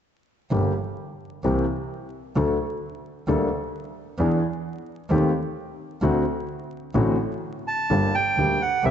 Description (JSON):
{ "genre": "tango", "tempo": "130 BPM", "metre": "4/4", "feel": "rubato", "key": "G harmonic minor", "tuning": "A4 = 440 Hz", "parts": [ { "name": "warm grand piano", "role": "accompaniment", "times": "0.5-8.9 s", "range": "G1 to A4", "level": "-25 LUFS", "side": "left 2 dB", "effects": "none" }, { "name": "rich double bass", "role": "bass", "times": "0.5-8.9 s", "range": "G1 to E2", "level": "-27 LUFS", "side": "right 2 dB", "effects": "none" }, { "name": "bandoneon", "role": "melody", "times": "7.7-8.9 s", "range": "E5 to A5", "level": "-22 LUFS", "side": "right 4 dB", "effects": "none" } ], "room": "moderate scoring stage reverb, RT60 2.1 s", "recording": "vinyl crackle, nothing above 8.0 kHz", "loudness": "-22 LUFS", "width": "side -9 dB against mid", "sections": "0.5-7.9 A section; 7.9-8.9 B section", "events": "none", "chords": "0.5 Gm; 1.4 C7; 2.4 D; 3.3 Gmadd9/D; 4.2 E7; 5.1 Am7b5/Eb; 6.0 D7; 7.9 Gm", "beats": "| 0.52 0.98 1.44 1.90 | 2.36 2.82 3.28 3.73 | 4.19 4.65 5.10 5.56 | 6.02 6.48 6.95 7.42 | 7.90 8.37 8.83" }